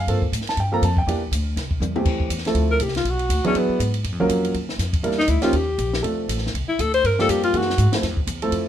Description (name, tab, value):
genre	jazz, small-group swing and bop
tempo	241 BPM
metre	4/4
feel	swing 58% on 8ths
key	F major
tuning	A4 = 441 Hz
part	warm grand piano	accompaniment	0.0-8.7 s	E3 to Bb5	-23 LUFS	right 2 dB	none
part	upright bass	bass	0.0-8.7 s	A1 to A2	-24 LUFS	equal	none
part	compact cocktail drum kit	drums	0.1-8.6 s	crash cymbal, hi-hat, kick drum, ride cymbal, snare drum, toms	-27 LUFS	equal	none
part	clear alto saxophone	melody	2.7-7.9 s	B3 to C5	-21 LUFS	left 2 dB	none
room	moderate club reverb, RT60 0.7 s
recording	minimal, uncompressed stereo recording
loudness	-19 LUFS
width	side -10 dB against mid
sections	0.0-2.1 A section; 2.1-8.7 A section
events	drum fill 1.8; alto saxophone solo 2.1-8.7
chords	0.1 Gm11; 1.1 Em7b5; 1.6 C; 2.1 Fmaj7; 3.1 Bm; 3.6 E9; 4.1 Gbmaj7; 5.0 Em7b5; 5.5 Eb; 6.0 Dm7; 7.0 Gm7; 7.5 Gb13; 8.0 Fmaj7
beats	| 0.08 0.32 0.57 0.82 | 1.07 1.32 1.57 1.81 | 2.06 2.31 2.56 2.81 | 3.06 3.31 3.55 3.80 | 4.05 4.30 4.55 4.80 | 5.05 5.30 5.54 5.79 | 6.04 6.29 6.54 6.79 | 7.04 7.29 7.53 7.78 | 8.03 8.28 8.53